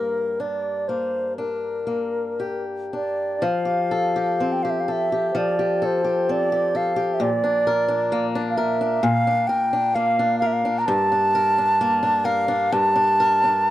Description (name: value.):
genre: celtic folk, Celtic slow air.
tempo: 57-67 BPM.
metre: 4/4.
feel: rubato.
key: unclear.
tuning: A4 = 439 Hz.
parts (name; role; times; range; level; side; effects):
baroque flute; melody; 0.0-13.7 s; Bb4 to Bb5; -20 LUFS; right 1 dB; none.
fingerpicked swing-style acoustic guitar; accompaniment; 0.0-13.7 s; G2 to Bb4; -24 LUFS; left 2 dB; none.
room: little or no reverb.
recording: dry, close 1970s-style studio recording.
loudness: -19 LUFS.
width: side -14 dB against mid.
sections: 0.0-3.4 A section; 3.4-13.7 B section.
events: none.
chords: 0.0 Gm; 3.4 Fadd9; 7.2 Bb; 10.9 Gm.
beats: 0.40 1.37 2.39 | 3.42 4.40 5.35 6.27 | 7.20 8.11 9.02 9.95 | 10.87 11.80 12.73 13.68.